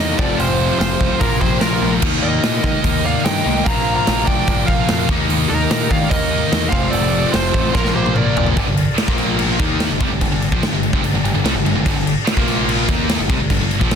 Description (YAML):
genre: hard rock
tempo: 146 BPM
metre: 4/4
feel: straight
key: G minor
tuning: A4 = 440 Hz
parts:
  - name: high-gain lead guitar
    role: melody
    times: 0.0-8.4 s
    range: Bb4 to Bb5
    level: -22 LUFS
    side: equal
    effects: distortion
  - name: biting lead guitar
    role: second line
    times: 0.0-8.4 s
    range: Eb4 to F5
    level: -28 LUFS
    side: right 6 dB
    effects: overdrive, digital delay
  - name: overdriven tonewheel organ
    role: sustained chords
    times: 0.0-14.0 s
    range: F3 to D5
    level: -33 LUFS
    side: right 1 dB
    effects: none
  - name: heavy high-gain guitar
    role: riff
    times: 0.0-14.0 s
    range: F2 to Eb4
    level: -24 LUFS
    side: right 14 dB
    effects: distortion
  - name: heavy high-gain guitar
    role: riff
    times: 0.0-14.0 s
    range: F2 to Eb4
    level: -25 LUFS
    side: right 1 dB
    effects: distortion
  - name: overdriven semi-hollow guitar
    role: riff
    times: 0.0-14.0 s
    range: F2 to Eb4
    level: -23 LUFS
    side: left 12 dB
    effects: none
  - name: growling picked electric bass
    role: bass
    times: 0.0-14.0 s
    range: F1 to Eb3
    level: -22 LUFS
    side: right 1 dB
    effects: overdrive
  - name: big rock drum kit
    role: drums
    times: 0.2-14.0 s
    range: crash cymbal, hi-hat, kick drum, snare drum, toms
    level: -19 LUFS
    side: equal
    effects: none
room: small room ambience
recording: dense, heavily limited modern master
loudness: -14 LUFS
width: side -7 dB against mid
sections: 0.0-8.6 A section; 8.6-14.0 B section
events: drum fill 7.7-8.6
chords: 0.2 F; 1.2 Bb; 2.0 Eb; 3.7 Bb; 5.1 Eb; 6.7 F; 7.7 Bb; 8.6 G5; 9.1 Bb5; 9.6 Gm; 12.4 Bb5; 12.9 Gm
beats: | 0.39 0.80 1.21 1.61 | 2.02 2.43 2.84 3.25 | 3.66 4.07 4.47 4.88 | 5.29 5.70 6.11 6.52 | 6.93 7.34 7.75 8.16 | 8.57 8.98 9.39 9.80 | 10.21 10.62 11.04 11.45 | 11.86 12.27 12.68 13.10 | 13.51 13.92